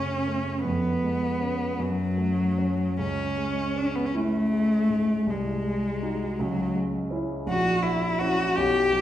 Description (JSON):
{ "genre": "classical, romantic duo for cello and grand piano", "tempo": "48-56 BPM (dotted quarters)", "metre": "6/8", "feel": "rubato", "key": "unclear", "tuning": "A4 = 440 Hz", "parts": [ { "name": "rich cello", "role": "melody", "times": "0.0-9.0 s", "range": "F#3 to G4", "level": "-25 LUFS", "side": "left 1 dB", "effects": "none" }, { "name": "warm grand piano", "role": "accompaniment", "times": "0.0-9.0 s", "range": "A#1 to F#4", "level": "-28 LUFS", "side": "right 2 dB", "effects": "none" } ], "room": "wet recital hall reverb, RT60 1.6 s", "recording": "recorded in a church or concert hall", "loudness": "-23 LUFS", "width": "side -12 dB against mid", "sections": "0.0-9.0 A section", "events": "none", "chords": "0.0 F#m; 0.6 C#7/E#; 1.8 F#m; 3.0 C#m; 5.3 G#7/B#; 6.4 C#m; 7.5 F#7/A#" }